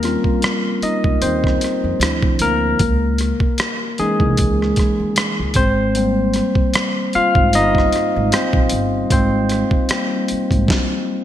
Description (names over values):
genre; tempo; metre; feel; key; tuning
R&B, neo-soul; 76 BPM; 4/4; swing 57% on 16ths; Ab major; A4 = 440 Hz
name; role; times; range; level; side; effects
barky tine electric piano; accompaniment; 0.0-11.2 s; Fb3 to F5; -18 LUFS; left 1 dB; none
upright bass; bass; 0.0-10.7 s; G1 to F2; -21 LUFS; right 1 dB; none
boom bap sampler-style drum kit; drums; 0.0-10.9 s; hi-hat, kick drum, rim click, snare drum; -19 LUFS; right 1 dB; gated reverb
room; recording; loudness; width
moderate lush hall reverb, RT60 1.7 s; bright 1980s-style digital production; -15 LUFS; side -11 dB against mid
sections
0.0-11.2 A section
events
tine electric piano solo 0.0-11.2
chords
0.0 Eb13; 2.0 Dmadd9; 2.8 Dbmadd9; 5.6 Abmaj7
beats
0.43 1.22 2.00 | 2.79 3.58 4.37 5.16 | 5.95 6.74 7.53 8.32 | 9.11 9.90 10.69